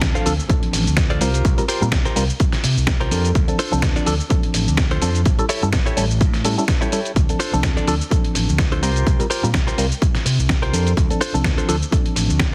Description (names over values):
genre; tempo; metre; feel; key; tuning
filtered disco house; 126 BPM; 4/4; swing 55% on 16ths; D minor; A4 = 440 Hz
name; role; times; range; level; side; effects
reed electric piano; accompaniment; 0.0-12.5 s; F3 to Bb4; -26 LUFS; equal; phaser, sidechain pumping
direct-recorded clean electric guitar; riff; 0.0-12.2 s; D4 to F5; -28 LUFS; equal; sidechain pumping
overdriven fingered electric bass; bass; 0.0-12.5 s; A1 to C3; -24 LUFS; equal; tube saturation, sidechain pumping
dusty soul sampler-style drum kit; drums; 0.0-12.5 s; hi-hat, shaker, snare drum; -27 LUFS; equal; sidechain pumping on hats, studio reverb, sidechain pumping on cymbals, sidechain pumping on perc
electronic kick drum; drums; 0.0-12.5 s; none; -21 LUFS; equal; studio reverb
impact; sound effects; 0.0-1.4 s; none; barely audible; none; none
room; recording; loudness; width
digital ambience; heavily compressed radio sound; -19 LUFS; mono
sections
0.0-12.5 A section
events
impact 0.0-1.4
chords
0.0 Dm7; 1.2 C7sus4; 3.4 Dm7; 5.3 A7; 7.2 Dm7; 8.8 C7sus4; 11.0 Dm7